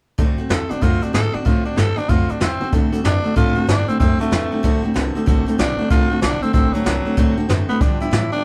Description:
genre	rockabilly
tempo	189 BPM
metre	4/4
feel	swing 64% on 8ths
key	D mixolydian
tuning	A4 = 444 Hz
part	picked steel-string acoustic guitar	accompaniment	0.2-8.4 s	G2 to G4	-29 LUFS	equal	none
part	electric guitar through a small old amp	riff	0.2-8.4 s	G2 to B3	-25 LUFS	equal	none
part	upright bass	bass	0.2-8.4 s	A1 to A2	-25 LUFS	equal	none
part	jazz brush drum kit	drums	0.2-8.2 s	hi-hat, kick drum, snare drum	-22 LUFS	equal	none
part	growling tenor saxophone	melody	0.5-8.4 s	F#3 to A4	-26 LUFS	equal	none
room	moderate small room reverb, RT60 0.5 s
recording	band playing live in one room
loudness	-18 LUFS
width	mono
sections	0.2-2.7 A section; 2.7-8.4 B section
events	none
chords	0.2 D7; 7.8 G7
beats	| 0.18 0.50 0.82 1.14 | 1.46 1.78 2.09 2.41 | 2.73 3.05 3.37 3.68 | 4.00 4.32 4.64 4.95 | 5.27 5.59 5.91 6.22 | 6.54 6.86 7.17 7.49 | 7.81 8.12 8.44

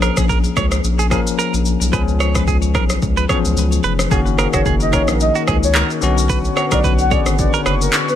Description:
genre	afrobeats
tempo	110 BPM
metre	4/4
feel	swing 55% on 16ths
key	F# major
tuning	A4 = 445 Hz
part	bell-like tine electric piano	accompaniment	0.0-8.2 s	D3 to A#4	-20 LUFS	left 7 dB	fast stereo tremolo
part	direct-recorded clean electric guitar	riff	0.0-7.7 s	F#4 to C#5	-23 LUFS	right 8 dB	vibrato effect, ping-pong delay
part	saturated sub bass	bass	0.0-7.9 s	E#1 to C#2	-18 LUFS	equal	none
part	afro-pop drum kit	drums	0.0-8.2 s	handclaps, kick drum, rim click, shaker	-19 LUFS	equal	overdrive
part	warm analog pad	sustained chords	4.5-8.2 s	A#4 to C#6	-28 LUFS	right 2 dB	chorus
part	soft octave-layered synth lead	melody	4.5-8.2 s	A#4 to F#5	-22 LUFS	equal	chorus, phaser, ping-pong delay
room	digital ambience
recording	lossy compression artefacts, faint mains hum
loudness	-14 LUFS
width	side -10 dB against mid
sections	0.0-4.1 A section; 4.1-8.2 B section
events	none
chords	0.0 A#m7; 1.9 C#7; 4.1 F#6; 6.0 Bmadd9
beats	0.29 0.84 1.39 | 1.93 2.48 3.02 3.57 | 4.11 4.66 5.20 5.75 | 6.29 6.84 7.38 7.93

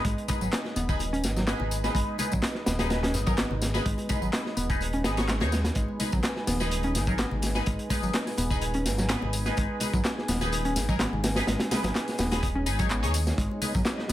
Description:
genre	breakbeat, breaks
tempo	126 BPM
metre	4/4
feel	swing 54% on 16ths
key	unclear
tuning	A4 = 439 Hz
part	dark analog pad	sustained chords	0.0-14.1 s	Ab3 to Ab5	-36 LUFS	right 1 dB	chorus, sidechain pumping
part	band-passed chord stab	stabs	0.0-13.7 s	Eb4 to Db5	-34 LUFS	left 2 dB	phaser, wide subtle chorus, digital delay
part	dark detuned saw bass	bass	0.0-14.1 s	Eb1 to Eb2	-30 LUFS	equal	none
part	crunchy breakbeat drum kit	drums	0.0-14.1 s	hi-hat, kick drum, snare drum	-29 LUFS	equal	none
part	punchy analog drum machine	drums	0.0-14.1 s	handclaps, hi-hat, tambourine	-35 LUFS	left 2 dB	none
part	overdriven picked electric bass	riff	0.1-14.1 s	Gb3 to Db4	-32 LUFS	equal	digital delay
part	bongos and congas	percussion	0.1-14.1 s	none	-40 LUFS	left 3 dB	none
room	light reverb, small room ambience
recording	none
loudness	-25 LUFS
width	side -14 dB against mid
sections	0.0-14.1 A section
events	none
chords	0.0 Abm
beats	| 0.05 0.52 1.00 1.48 | 1.95 2.43 2.90 3.38 | 3.86 4.33 4.81 5.29 | 5.76 6.24 6.71 7.19 | 7.67 8.14 8.62 9.09 | 9.57 10.05 10.52 11.00 | 11.47 11.95 12.43 12.90 | 13.38 13.86

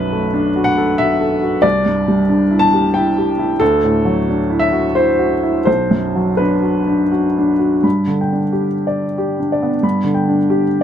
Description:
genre	neoclassical minimalist piano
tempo	81-94 BPM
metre	3/4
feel	rubato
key	unclear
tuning	A4 = 440 Hz
part	warm upright piano	solo	0.0-10.8 s	B1 to B5	-13 LUFS	equal	none
room	light reverb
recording	close, detailed microphones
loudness	-13 LUFS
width	side -9 dB against mid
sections	0.0-7.8 A section; 7.8-10.8 B section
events	none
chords	0.0 Bm7; 1.6 Cadd9; 3.6 Dadd9; 5.7 Bm; 7.8 G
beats	0.35 0.99 | 1.64 2.29 2.95 | 3.60 4.27 4.95 | 5.67 6.41 7.13 | 7.84 8.52 9.18 | 9.83 10.48

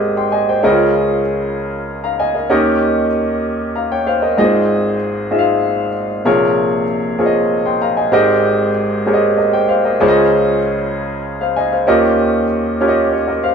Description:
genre	gospel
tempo	64 BPM (dotted quarters)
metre	6/8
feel	straight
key	Ab major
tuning	A4 = 439 Hz
part	clear baby grand piano	solo	0.0-13.5 s	Ab1 to C6	-13 LUFS	equal	none
room	wet small room reverb, RT60 0.5 s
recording	band playing live in one room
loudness	-13 LUFS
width	side -6 dB against mid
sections	0.0-13.5 A section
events	none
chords	0.0 Abmaj9; 0.6 Db69; 2.5 Eb7; 4.4 Ab6; 6.3 Bbm9; 8.1 Abmaj9; 10.0 Dbmaj9; 11.9 Eb9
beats	| 0.64 1.58 | 2.51 3.45 | 4.39 5.33 | 6.26 7.20 | 8.13 9.07 | 10.01 10.94 | 11.88 12.81

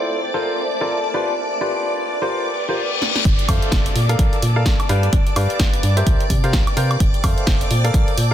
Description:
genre	piano house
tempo	128 BPM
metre	4/4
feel	swing 59% on 16ths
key	F major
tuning	A4 = 439 Hz
part	string machine, violins	sustained chords	0.0-8.3 s	D5 to D6	-27 LUFS	equal	ensemble chorus, sidechain pumping
part	clear baby grand piano	riff	0.0-8.3 s	E4 to F5	-24 LUFS	left 1 dB	sidechain pumping, ping-pong delay
part	granular cloud pad	texture	0.0-8.3 s	A4 to A5	-27 LUFS	equal	built-in reverb, sidechain pumping
part	reverse cymbal and downlifter	sound effects	2.5-7.0 s	none	-26 LUFS	left 4 dB	none
part	punchy analog drum machine	drums	3.0-8.3 s	hi-hat, snare drum, woodblock	-25 LUFS	right 1 dB	none
part	organ-like FM bass	bass	3.3-8.3 s	F1 to C3	-19 LUFS	equal	sidechain pumping
part	electronic kick drum	drums	3.3-8.1 s	none	-18 LUFS	equal	none
room	light reverb, digital ambience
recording	dense, heavily limited modern master, low-pass filter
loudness	-16 LUFS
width	side -11 dB against mid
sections	0.0-3.3 A section; 3.3-8.3 B section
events	filter sweep 0.0-3.3; reverse cymbal 2.5-3.3; drum fill 3.0; drop 3.3-8.3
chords	0.2 Bbmaj7; 1.1 G7; 2.3 C7sus4; 3.3 Fmaj7; 4.0 Bbmaj7; 4.9 G7; 6.1 C7sus4; 7.0 Fmaj7; 7.7 Bbmaj7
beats	0.44 0.91 | 1.38 1.85 2.31 2.78 | 3.25 3.72 4.19 4.66 | 5.13 5.60 6.06 6.53 | 7.00 7.47 7.94

